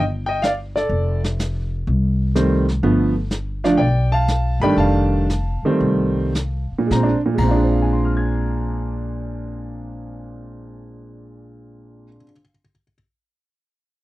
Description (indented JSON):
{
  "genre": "jazz piano trio",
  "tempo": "106-125 BPM",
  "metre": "4/4",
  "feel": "swing 68% on 8ths",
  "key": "Bb major",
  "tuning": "A4 = 440 Hz",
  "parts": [
    { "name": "warm concert grand piano", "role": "melody", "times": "0.0-12.9 s", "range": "Bb2 to Ab6", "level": "-20 LUFS", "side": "right 1 dB", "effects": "none" },
    { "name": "upright bass", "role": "bass", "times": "0.0-12.1 s", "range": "F1 to C2", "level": "-21 LUFS", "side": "equal", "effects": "none" },
    { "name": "vintage brush drum kit", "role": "drums", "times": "0.4-7.5 s", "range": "brushed snare drum, crash cymbal, hi-hat, kick drum, snare drum", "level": "-27 LUFS", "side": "equal", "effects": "none" }
  ],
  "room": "little or no reverb",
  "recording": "dry, close 1970s-style studio recording",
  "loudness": "-17 LUFS",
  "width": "side -16 dB against mid",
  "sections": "0.0-6.9 A section; 6.9-11.4 B section",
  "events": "slowing down 2.8-6.9",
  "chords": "0.0 Csus2 (rootless); 0.9 F; 2.8 G9; 4.8 F7; 6.9 Bb9"
}